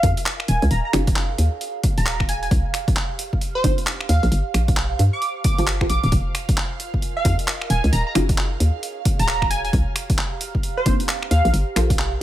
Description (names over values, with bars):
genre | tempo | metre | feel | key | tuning
UK garage, two-step garage | 133 BPM | 4/4 | swing 62% on 16ths | unclear | A4 = 440 Hz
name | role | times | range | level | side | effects
plucky unison lead | melody | 0.0-11.5 s | C5 to D6 | -25 LUFS | right 1 dB | lush chorus, ping-pong delay
ethereal airy pad | sustained chords | 0.4-12.2 s | F5 | -33 LUFS | right 11 dB | ensemble chorus, built-in reverb, phaser, sidechain pumping
punchy chord stab | stabs | 0.0-11.9 s | Bb3 to C5 | -26 LUFS | equal | chorus, phaser, ping-pong delay
hollow knocking FM bass | bass | 0.0-12.2 s | D1 to G2 | -20 LUFS | equal | none
breakbeat sampler-style drum kit | drums | 0.0-12.1 s | finger snaps, handclaps, hi-hat | -26 LUFS | equal | small room reverb
electronic kick drum | drums | 0.0-12.0 s | none | -22 LUFS | equal | overdrive, small room reverb
warbly tape-like pad | texture | 0.0-12.2 s | F4 to Bb5 | -38 LUFS | right 1 dB | chorus, built-in reverb, sidechain pumping
room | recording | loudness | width
little or no reverb | none | -18 LUFS | side -13 dB against mid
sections
0.0-12.2 A section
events
fade-in on ambient pad 0.0-12.2; filter sweep on synth stab 0.0-12.2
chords
0.5 Ebm11; 2.5 Cm11; 4.3 Gm11; 6.1 Fm11; 7.7 Ebm11; 9.7 Cm11; 11.5 Gm11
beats
0.26 | 0.71 1.16 1.61 2.06 | 2.51 2.96 3.42 3.87 | 4.32 4.77 5.22 5.67 | 6.12 6.57 7.03 7.48 | 7.93 8.38 8.83 9.28 | 9.73 10.18 10.63 11.09 | 11.54 11.99